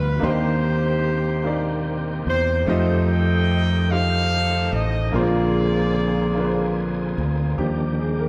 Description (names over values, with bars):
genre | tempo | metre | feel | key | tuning
gospel | 49 BPM (dotted quarters) | 6/8 | straight | unclear | A4 = 440 Hz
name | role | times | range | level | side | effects
warm horn section | melody | 0.0-7.2 s | Eb4 to G5 | -27 LUFS | equal | none
warm upright piano | accompaniment | 0.0-8.3 s | G2 to Eb5 | -29 LUFS | equal | none
overdriven tonewheel organ | sustained chords | 0.0-8.3 s | D3 to Ab4 | -33 LUFS | equal | slow rotary speaker, chorus vibrato
fingered electric bass | bass | 0.0-8.3 s | A1 to F2 | -24 LUFS | equal | none
room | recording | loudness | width
moderate large studio reverb, RT60 1.3 s | band playing live in one room | -21 LUFS | mono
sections
0.0-7.6 A section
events
none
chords
0.2 Cm9/Eb; 2.7 F9; 5.1 Bb9; 7.6 Ebmaj7